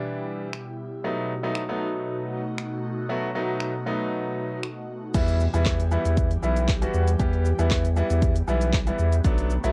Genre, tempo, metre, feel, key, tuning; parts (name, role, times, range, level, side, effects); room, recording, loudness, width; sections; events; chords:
dance-pop; 117 BPM; 4/4; straight; E minor; A4 = 440 Hz
bright concert grand piano; accompaniment; 0.0-9.7 s; E3 to G4; -30 LUFS; equal; sidechain pumping, cassette tape
airy breathy pad; sustained chords; 0.0-9.7 s; B2 to G4; -35 LUFS; equal; chorus, phaser, sidechain pumping, cassette tape
deep house drum kit; drums; 0.5-9.7 s; crash cymbal, finger snaps, handclaps, hi-hat, kick drum, shaker, snare drum; -28 LUFS; equal; cassette tape
saturated sub bass; bass; 5.1-9.7 s; B1 to E2; -25 LUFS; equal; sidechain pumping
light reverb; home recording on cassette; -25 LUFS; mono
0.0-5.1 A section; 5.1-9.7 B section
0.0 Em; 1.0 B7; 5.1 Em